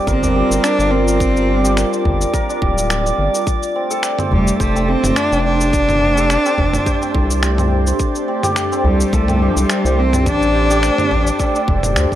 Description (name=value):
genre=organic downtempo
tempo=106 BPM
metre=4/4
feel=swing 55% on 16ths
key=unclear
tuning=A4 = 440 Hz
part: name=airy breathy pad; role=sustained chords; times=0.0-12.2 s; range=G3 to C5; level=-22 LUFS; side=equal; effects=chorus, sidechain pumping
part: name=santur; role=arpeggios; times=0.0-12.2 s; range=C4 to C5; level=-22 LUFS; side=right 1 dB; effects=tape echo
part: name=drifting glass-harmonics texture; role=texture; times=0.0-12.2 s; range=D5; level=-29 LUFS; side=right 2 dB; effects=chorus, built-in reverb
part: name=rich cello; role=melody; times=0.1-12.0 s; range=F3 to D4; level=-18 LUFS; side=equal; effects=tape echo
part: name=round analog bass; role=bass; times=0.1-12.1 s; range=D1 to D2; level=-18 LUFS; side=equal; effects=sidechain pumping
part: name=dusty soul sampler-style drum kit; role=drums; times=0.1-12.2 s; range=cabasa, finger snaps, toms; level=-23 LUFS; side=equal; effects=overdrive, small room reverb
part: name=electronic kick drum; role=drums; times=0.1-12.2 s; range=none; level=-20 LUFS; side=equal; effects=small room reverb
part: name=udu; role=percussion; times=0.2-11.8 s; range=none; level=-23 LUFS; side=equal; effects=none
room=light reverb, digital ambience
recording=dry, gritty hardware recording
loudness=-14 LUFS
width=side -12 dB against mid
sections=0.0-12.2 A section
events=none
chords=0.0 Gm7; 3.5 F; 8.0 C5; 10.3 A7sus4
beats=0.07 0.64 | 1.21 1.77 2.34 2.90 | 3.47 4.04 4.60 5.17 | 5.73 6.30 6.87 7.43 | 8.00 8.56 9.13 9.70 | 10.26 10.83 11.39 11.96